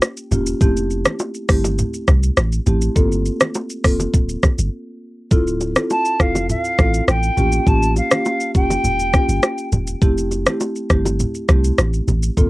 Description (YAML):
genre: afrobeats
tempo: 102 BPM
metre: 4/4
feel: straight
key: unclear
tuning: A4 = 439 Hz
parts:
  - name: afro-pop drum kit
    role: drums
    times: 0.0-12.5 s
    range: hi-hat, kick drum, rim click, shaker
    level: -16 LUFS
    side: equal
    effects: cassette tape
  - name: bongos and congas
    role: percussion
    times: 0.0-12.5 s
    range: none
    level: -25 LUFS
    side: equal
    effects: none
  - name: marimba with medium mallets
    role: accompaniment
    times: 0.3-12.5 s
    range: A3 to A4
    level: -22 LUFS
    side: equal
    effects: cassette tape
  - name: punchy sub bass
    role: bass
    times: 0.3-12.5 s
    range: D1 to C2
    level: -19 LUFS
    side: equal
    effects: none
  - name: silver concert flute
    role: melody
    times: 5.9-9.7 s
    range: F5 to A5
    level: -20 LUFS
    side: equal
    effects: cassette tape
room: light reverb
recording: home recording on cassette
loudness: -15 LUFS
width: side -19 dB against mid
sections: 0.0-5.3 A section; 5.3-12.5 B section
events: break 4.7-5.3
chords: 0.0 A7b9b13 (rootless); 0.6 Fmaj9; 3.0 Gm11; 5.3 Dm7; 7.4 A7b9b13; 10.0 Fmaj9